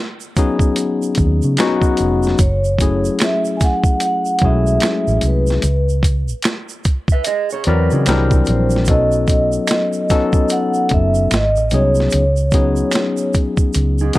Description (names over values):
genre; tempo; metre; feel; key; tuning
R&B, neo-soul; 74 BPM; 4/4; swing 62% on 16ths; unclear; A4 = 437 Hz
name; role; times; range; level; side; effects
tube shaker and finger snaps; percussion; 0.2-14.2 s; none; -28 LUFS; right 6 dB; none
barky tine electric piano; accompaniment; 0.4-14.2 s; E3 to D5; -18 LUFS; left 4 dB; none
boom bap sampler-style drum kit; drums; 0.4-14.2 s; hi-hat, kick drum, snare drum; -17 LUFS; equal; none
vintage muted fingered electric bass; bass; 1.2-14.2 s; E#1 to C#3; -17 LUFS; right 1 dB; none
vibraphone with soft mallets; melody; 2.4-13.3 s; B4 to G#5; -19 LUFS; right 1 dB; none
mellow electric guitar; second line; 7.1-8.3, 14.0-14.2 s; D#4 to E5; -21 LUFS; right 7 dB; none
room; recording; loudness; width
little or no reverb; dark, warm production; -14 LUFS; side -17 dB against mid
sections
0.0-14.2 A section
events
none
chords
0.0 C#9sus4; 2.4 F#m7; 5.6 C#madd11; 8.1 C9; 8.9 B7; 11.3 G#7; 12.1 C#9sus4